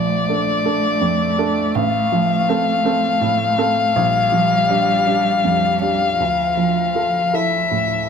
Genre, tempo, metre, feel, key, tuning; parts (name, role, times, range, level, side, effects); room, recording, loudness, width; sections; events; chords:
neoclassical piano and strings; 54 BPM (dotted quarters); 6/8; rubato; G dorian; A4 = 440 Hz
muted violin; melody; 0.0-8.1 s; D5 to F5; -18 LUFS; left 6 dB
muted cello; second line; 0.0-8.1 s; F3 to A3; -24 LUFS; right 4 dB
warm upright piano; accompaniment; 0.0-8.1 s; A1 to A4; -20 LUFS; right 5 dB
light reverb; close, detailed microphones; -15 LUFS; side -6 dB against mid
0.0-8.1 A section
0.0 Bbmaj7; 1.8 F/A; 4.0 Gm7/Bb; 6.2 Dmadd9